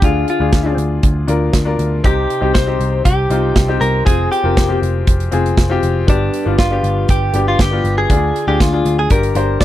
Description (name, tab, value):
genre	piano-driven pop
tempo	119 BPM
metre	4/4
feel	straight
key	C minor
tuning	A4 = 440 Hz
part	direct-recorded clean electric guitar	melody	0.0-9.6 s	D4 to D5	-19 LUFS	equal	lush chorus
part	bright upright piano	accompaniment	0.0-9.6 s	G2 to C5	-19 LUFS	left 4 dB	none
part	vintage muted picked electric bass	bass	0.0-9.6 s	F1 to D2	-18 LUFS	equal	none
part	modern studio drum kit	drums	0.0-9.6 s	hi-hat, kick drum, snare drum	-15 LUFS	equal	none
room	little or no reverb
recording	dry, close 1970s-style studio recording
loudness	-12 LUFS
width	side -13 dB against mid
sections	0.0-9.6 A section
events	none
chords	0.0 Ddim; 2.0 Cm; 4.1 Fm; 6.1 G; 8.1 Ddim; 9.1 Gm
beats	| 0.03 0.53 1.04 1.54 | 2.04 2.55 3.05 3.56 | 4.06 4.57 5.07 5.58 | 6.08 6.58 7.09 7.59 | 8.10 8.60 9.11 9.61